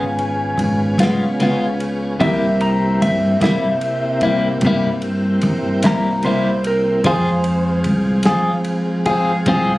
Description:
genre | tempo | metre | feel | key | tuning
slow blues | 50 BPM (dotted quarters) | 12/8 | straight | unclear | A4 = 440 Hz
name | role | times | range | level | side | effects
electric slide guitar | second line | 0.0-7.8 s | Bb4 to Bb5 | -22 LUFS | equal | none
bright upright piano | accompaniment | 0.0-9.8 s | F4 to F5 | -28 LUFS | right 2 dB | none
clean electric guitar | accompaniment | 0.0-9.7 s | C3 to Ab4 | -17 LUFS | left 2 dB | harmonic tremolo
tonewheel organ | sustained chords | 0.0-9.8 s | Ab3 to Ab4 | -23 LUFS | equal | chorus vibrato, slow rotary speaker
upright bass | bass | 0.0-9.8 s | Ab1 to F3 | -20 LUFS | equal | none
warm soul drum kit | drums | 0.2-9.7 s | kick drum, ride cymbal, snare drum | -26 LUFS | equal | none
room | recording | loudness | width
light reverb | recorded on a phone in the room, club reverb, compression | -15 LUFS | side -18 dB against mid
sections
0.0-9.8 A section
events
electric slide guitar solo 0.0-9.8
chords
0.0 Db7; 2.2 C7; 7.1 Fm

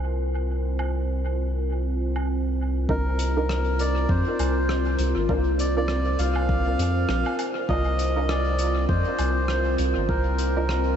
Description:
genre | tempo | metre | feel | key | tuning
ambient dub | 100 BPM | 4/4 | swing 58% on 16ths | C minor | A4 = 440 Hz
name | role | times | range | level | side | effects
deep dark ambient pad | sustained chords | 0.0-11.0 s | C4 to C5 | -28 LUFS | equal | chorus, built-in reverb, vintage 12-bit sampler grit
soft dub sub bass | bass | 0.0-11.0 s | G1 to F2 | -24 LUFS | equal | none
loose indie drum kit | drums | 0.8-10.8 s | hi-hat, rim click, woodblock | -35 LUFS | equal | dub echo
melodica | melody | 2.9-11.0 s | Bb4 to F5 | -29 LUFS | equal | dub echo
filtered dub chord stab | stabs | 2.9-10.7 s | D4 to Bb4 | -34 LUFS | right 2 dB | none
electronic kick drum | drums | 2.9-10.2 s | none | -28 LUFS | equal | none
room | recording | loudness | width
moderate huge ambient reverb, RT60 7.4 s | dreamy mix soaked in reverb, nothing above 8.0 kHz | -22 LUFS | side -9 dB against mid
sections
0.0-2.9 A section; 2.9-11.0 B section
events
none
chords
0.0 C7sus4; 2.9 Cm11

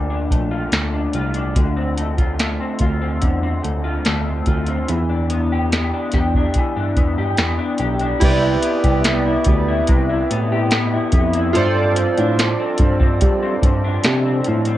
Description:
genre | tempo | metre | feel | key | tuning
indie pop, bedroom pop | 72 BPM | 4/4 | straight | C major | A4 = 440 Hz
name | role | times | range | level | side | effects
electric guitar through a small old amp | accompaniment | 0.0-14.8 s | G2 to G4 | -21 LUFS | left 2 dB | analog chorus, warbly pitch drift
tine electric piano | bass | 0.0-14.8 s | Bb1 to G3 | -21 LUFS | equal | overdrive, fast stereo tremolo
soft vintage rhythm box | drums | 0.3-14.8 s | crash cymbal, hi-hat, kick drum, snare drum | -18 LUFS | equal | none
chorused retro synth keys | accompaniment | 8.2-14.8 s | E4 to D5 | -21 LUFS | right 3 dB | cassette tape
room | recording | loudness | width
light reverb | worn, warbling old tape, cassette tape, warbly pitch drift | -16 LUFS | side -13 dB against mid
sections
0.0-8.2 A section; 8.2-14.8 B section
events
none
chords
0.0 Bbmaj7; 1.6 Dm7; 4.9 Em7; 8.2 Cmaj7; 11.6 G7sus4

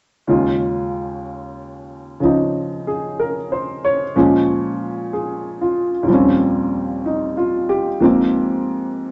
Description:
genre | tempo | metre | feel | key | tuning
solo jazz | 62 BPM | 4/4 | swing 68% on 8ths | Eb mixolydian | A4 = 441 Hz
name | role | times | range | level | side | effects
warm upright piano | solo | 0.3-9.1 s | Eb2 to Db5 | -19 LUFS | equal | none
room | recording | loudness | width
moderate studio reverb, RT60 0.6 s | nothing above 8.0 kHz | -19 LUFS | mono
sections
0.3-9.1 A section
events
none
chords
0.3 Eb9sus4; 4.1 Bbm7; 6.1 Eb13; 8.0 Ab69

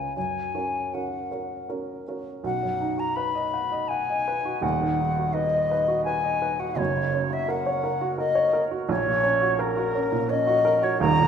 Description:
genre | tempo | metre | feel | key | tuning
classical, romantic duo for flute and grand piano | 78-87 BPM | 3/4 | rubato | B major | A4 = 440 Hz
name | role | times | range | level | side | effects
silver concert flute | melody | 0.0-11.3 s | A#4 to B5 | -24 LUFS | left 3 dB | none
warm baby grand piano | accompaniment | 0.0-11.3 s | D#1 to F#5 | -27 LUFS | right 4 dB | none
room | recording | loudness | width
wet recital hall reverb, RT60 1.4 s | minimal, uncompressed stereo recording | -22 LUFS | side -7 dB against mid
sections
0.0-2.4 A section; 2.4-11.3 B section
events
none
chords
0.2 F#; 2.4 B; 4.6 B/D#; 6.8 F#; 8.9 F#/A#

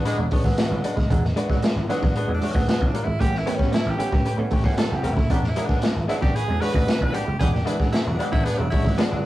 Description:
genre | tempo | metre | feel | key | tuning
funk | 114 BPM | 4/4 | straight | E mixolydian | A4 = 438 Hz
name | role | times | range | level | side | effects
bright tenor saxophone | melody | 0.0-9.3 s | G#3 to B4 | -29 LUFS | right 1 dB | none
clear horn section | second line | 0.0-0.3, 5.3-8.7 s | B3 to B4 | -33 LUFS | left 2 dB | none
direct-recorded clean electric guitar | accompaniment | 0.0-9.2 s | G#3 to C#5 | -30 LUFS | left 2 dB | none
semi-hollow electric guitar | riff | 0.0-9.1 s | E3 to B3 | -32 LUFS | right 3 dB | none
vintage slap bass | bass | 0.1-9.2 s | E1 to A2 | -27 LUFS | equal | none
crunchy breakbeat drum kit | drums | 0.1-9.1 s | hi-hat, kick drum, snare drum | -22 LUFS | equal | none
mellow clav | stabs | 0.2-9.3 s | A2 to D4 | -30 LUFS | right 3 dB | phaser
room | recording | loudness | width
moderate studio reverb, RT60 0.6 s | rough rehearsal-room recording, warm saturation | -20 LUFS | side -16 dB against mid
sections
0.0-9.3 A section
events
tenor saxophone solo 0.0-9.3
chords
0.0 E9; 3.2 A9; 5.3 E9

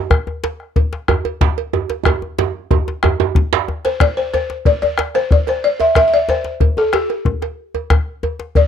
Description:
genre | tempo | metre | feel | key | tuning
west african traditional, West African drum ensemble | 123 BPM (dotted quarters) | 12/8 | straight | C major pentatonic | A4 = 438 Hz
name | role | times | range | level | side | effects
bombo | percussion | 0.1-8.7 s | none | -16 LUFS | left 2 dB | none
cowbell | percussion | 0.1-8.7 s | none | -23 LUFS | right 16 dB | none
djembe | percussion | 0.1-8.7 s | none | -20 LUFS | left 2 dB | none
djembe | percussion | 1.1-3.7 s | none | -18 LUFS | right 9 dB | none
balafon | melody | 3.9-8.6 s | G4 to E5 | -16 LUFS | left 3 dB | none
room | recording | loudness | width
light reverb | dry, close 1970s-style studio recording | -15 LUFS | side -8 dB against mid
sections
0.0-4.0 A section; 4.0-8.7 B section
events
drum fill 2.1-4.0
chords
none

